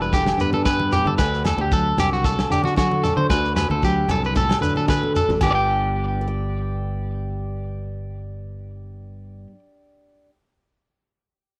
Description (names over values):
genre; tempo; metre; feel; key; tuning
highlife guitar band; 114 BPM; 4/4; swing 54% on 16ths; G major; A4 = 438 Hz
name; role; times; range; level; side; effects
picked steel-string acoustic guitar; accompaniment; 0.0-10.4 s; G2 to G5; -30 LUFS; equal; none
electric guitar at the edge of break-up; arpeggios; 0.0-9.6 s; F#4 to G5; -25 LUFS; equal; spring reverb, tape echo
fingered electric bass; bass; 0.0-9.5 s; E1 to D3; -28 LUFS; equal; none
shekere; percussion; 0.0-5.7 s; none; -32 LUFS; equal; none
warm soul drum kit; drums; 0.1-5.5 s; crash cymbal, kick drum, snare drum; -26 LUFS; equal; none
agogo bells; percussion; 0.3-5.5 s; none; -35 LUFS; equal; none
congas; percussion; 0.5-5.7 s; none; -31 LUFS; equal; none
room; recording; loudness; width
little or no reverb; dry, close 1970s-style studio recording; -21 LUFS; mono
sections
0.0-5.4 A section; 5.4-9.6 B section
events
drum fill 4.8-5.4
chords
0.0 G; 1.2 D; 5.4 G